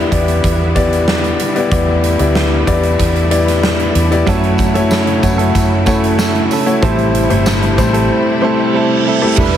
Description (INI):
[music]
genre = piano-driven pop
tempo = 94 BPM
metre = 4/4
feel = straight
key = unclear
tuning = A4 = 440 Hz
[part]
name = warm concert grand piano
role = accompaniment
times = 0.0-9.4 s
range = A2 to D5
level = -15 LUFS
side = left 3 dB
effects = none
[part]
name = bright studio string section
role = sustained chords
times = 0.0-9.6 s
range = C3 to B4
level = -22 LUFS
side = equal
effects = none
[part]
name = vintage muted fingered electric bass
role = bass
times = 0.0-9.6 s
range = E1 to F#2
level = -17 LUFS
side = right 1 dB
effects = none
[part]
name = huge arena drum kit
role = drums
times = 0.1-9.6 s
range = crash cymbal, hi-hat, kick drum, snare drum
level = -18 LUFS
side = right 1 dB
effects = none
[part]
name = direct-recorded clean electric guitar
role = riff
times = 4.3-9.6 s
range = A2 to B4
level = -18 LUFS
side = right 7 dB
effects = none
[part]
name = tambourine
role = percussion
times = 4.3-9.5 s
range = none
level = -30 LUFS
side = left 1 dB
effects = none
[part]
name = reverse cymbal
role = sound effects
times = 8.4-9.4 s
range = none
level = -21 LUFS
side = right 8 dB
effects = none
[sound]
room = light reverb, small room ambience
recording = heavily compressed radio sound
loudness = -11 LUFS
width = side -10 dB against mid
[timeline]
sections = 0.0-9.4 A section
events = reverse cymbal 8.4-9.4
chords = 0.0 Em7; 4.3 F#m7; 6.8 Am7